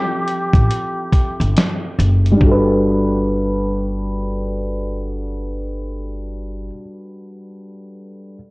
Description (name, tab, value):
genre	lo-fi hip hop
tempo	70 BPM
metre	4/4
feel	swing 63% on 16ths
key	G major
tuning	A4 = 440 Hz
part	trumpet with plunger mute	melody	0.0-1.6 s	G4	-24 LUFS	equal	low-pass filter, tape echo
part	felt-muted upright piano	accompaniment	0.0-8.4 s	F3 to B4	-21 LUFS	equal	cassette tape, low-pass filter
part	dusty soul sampler-style drum kit	drums	0.3-2.7 s	hi-hat, kick drum, snare drum	-16 LUFS	equal	none
part	upright bass	bass	0.5-6.7 s	F#1 to A1	-20 LUFS	equal	none
room	moderate spring reverb, RT60 2.4 s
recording	worn, warbling old tape, cassette tape, warbly pitch drift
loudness	-15 LUFS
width	side -24 dB against mid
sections	0.0-2.4 A section; 2.4-5.8 B section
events	filter sweep 0.0-2.4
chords	0.0 Fmaj9; 2.4 Gmaj9